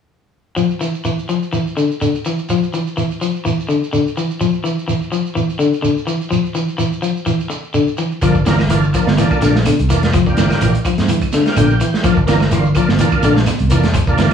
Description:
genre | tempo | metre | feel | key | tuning
afrobeat | 126 BPM | 4/4 | swing 55% on 16ths | G dorian | A4 = 440 Hz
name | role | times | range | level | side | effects
electric guitar at the edge of break-up | arpeggios | 0.6-14.3 s | D3 to F3 | -17 LUFS | left 3 dB | none
shekere | percussion | 0.6-14.3 s | none | -24 LUFS | right 5 dB | none
tonewheel organ | accompaniment | 8.2-14.3 s | Bb3 to G5 | -20 LUFS | right 2 dB | slow rotary speaker, chorus vibrato
fingered electric bass | bass | 8.2-14.3 s | F1 to G2 | -16 LUFS | right 1 dB | none
vintage drum kit | drums | 8.2-14.3 s | hi-hat, kick drum, snare drum | -19 LUFS | right 1 dB | none
claves | percussion | 8.2-14.3 s | none | -32 LUFS | right 5 dB | none
congas | percussion | 8.2-14.3 s | none | -25 LUFS | right 10 dB | none
room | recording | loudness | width
wet studio ambience, RT60 0.5 s | band playing live in one room, studio reverb | -14 LUFS | side -7 dB against mid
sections
0.6-14.3 A section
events
tonewheel organ fill 11.1-12.0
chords
0.6 Gm7

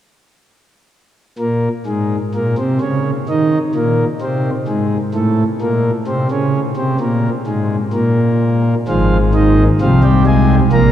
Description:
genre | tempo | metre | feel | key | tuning
classical, baroque-style 4-part fugue for pipe organ | 64 BPM | 4/4 | straight | unclear | A4 = 440 Hz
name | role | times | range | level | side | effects
pipe organ, principal chorus | solo | 1.4-10.9 s | Ab1 to Bb3 | -13 LUFS | equal | none
room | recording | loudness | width
wet cathedral reverb, RT60 6.3 s | dark, warm production | -13 LUFS | side -11 dB against mid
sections
1.4-10.9 A section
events
none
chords
1.4 N.C.; 8.9 Fm/Ab

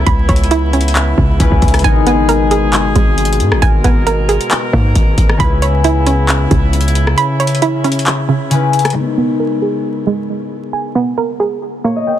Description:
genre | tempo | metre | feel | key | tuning
hip hop, trap | 135 BPM | 4/4 | half-time | G# minor | A4 = 439 Hz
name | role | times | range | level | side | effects
concert harp | accompaniment | 0.0-12.2 s | C#3 to G5 | -18 LUFS | left 4 dB | low-pass filter
mellow brass ensemble | sustained chords | 0.0-8.9 s | B2 to A#4 | -21 LUFS | equal | none
hollow square pluck | arpeggios | 0.0-12.2 s | C#3 to B5 | -17 LUFS | right 5 dB | chorus, low-pass filter, digital delay
hard-hitting 808-style bass | bass | 0.0-7.2 s | G1 to G#2 | -14 LUFS | equal | none
booming analog drum machine | drums | 0.1-9.0 s | handclaps, hi-hat, kick drum, rim click | -15 LUFS | equal | none
room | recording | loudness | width
little or no reverb | dense, heavily limited modern master, vinyl crackle | -11 LUFS | side -11 dB against mid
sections
0.0-9.0 A section; 9.0-12.2 B section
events
kick muted 7.2-9.0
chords
0.0 C#m7; 1.8 G#madd9; 5.4 C#m7; 9.0 G#madd9

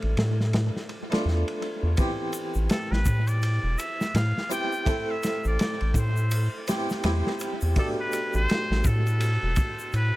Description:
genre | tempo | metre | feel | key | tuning
trip hop | 83 BPM | 4/4 | swing 60% on 16ths | A minor | A4 = 440 Hz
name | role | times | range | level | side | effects
harpsichord | accompaniment | 0.0-10.2 s | B2 to A4 | -31 LUFS | equal | tremolo, low-pass filter, tape echo
round analog bass | bass | 0.0-10.1 s | E1 to A2 | -24 LUFS | equal | none
crunchy breakbeat drum kit | drums | 0.0-10.1 s | kick drum, ride cymbal, snare drum | -29 LUFS | equal | tape echo
tube shaker and triangle | percussion | 2.0-10.1 s | none | -42 LUFS | left 2 dB | none
trumpet with straight mute | melody | 2.7-10.2 s | A4 to G5 | -31 LUFS | equal | vintage 12-bit sampler grit, tape echo
room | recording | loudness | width
small room reverb | echo-heavy mix | -23 LUFS | side -18 dB against mid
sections
0.0-10.2 A section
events
filter sweep on harpsichord 0.0-10.2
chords
0.0 Gadd9 (rootless); 2.0 Am9; 7.8 Gadd9

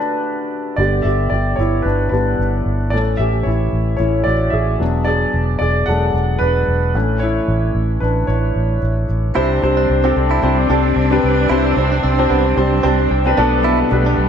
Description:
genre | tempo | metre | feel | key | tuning
pop | 112 BPM | 4/4 | swing 56% on 16ths | unclear | A4 = 442 Hz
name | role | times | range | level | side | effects
warm concert grand piano | accompaniment | 0.0-14.3 s | B2 to A5 | -17 LUFS | left 1 dB | wide subtle chorus
vintage muted fingered electric bass | bass | 0.8-14.3 s | E1 to C2 | -18 LUFS | equal | none
warm studio string section | sustained chords | 9.4-14.3 s | G3 to D4 | -24 LUFS | right 5 dB | none
direct-recorded clean electric guitar | riff | 9.4-14.2 s | B3 to E4 | -24 LUFS | right 11 dB | spring reverb
room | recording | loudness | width
moderate lush hall reverb, RT60 2.0 s, small room ambience | dreamy mix soaked in reverb | -14 LUFS | side -8 dB against mid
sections
0.0-9.4 A section; 9.4-14.3 B section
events
grand piano solo 0.0-9.4; grand piano fill 12.6-13.6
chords
0.0 Bm7; 0.8 G; 2.9 A; 4.8 E7; 6.9 A; 9.4 Csus2; 13.4 Gadd9/B

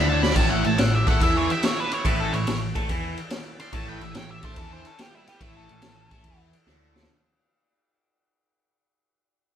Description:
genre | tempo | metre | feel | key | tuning
blues rock power trio and southern rock | 143 BPM | 4/4 | swing 68% on 8ths | A mixolydian | A4 = 440 Hz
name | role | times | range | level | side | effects
octave-fuzz lead guitar | melody | 0.0-6.4 s | E4 to C6 | -30 LUFS | right 1 dB | distortion
biting lead guitar | second line | 0.0-6.4 s | G3 to D5 | -34 LUFS | right 3 dB | overdrive
overdriven tonewheel organ | sustained chords | 0.0-7.1 s | C#4 to C#5 | -39 LUFS | right 2 dB | none
cranked stack guitar | riff | 0.0-7.1 s | A2 to A4 | -27 LUFS | equal | overdrive, phaser
vintage muted picked electric bass | bass | 0.0-7.1 s | A1 to A2 | -28 LUFS | equal | none
raw garage drum kit | drums | 0.2-7.1 s | kick drum, ride cymbal, snare drum, splash cymbal | -26 LUFS | equal | none
room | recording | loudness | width
moderate stone room reverb, RT60 1.1 s | band playing live in one room | -20 LUFS | side -9 dB against mid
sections
0.0-7.1 A section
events
fade-out 0.0-7.1; drum fill 0.0-0.4, 6.7-7.1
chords
0.0 A

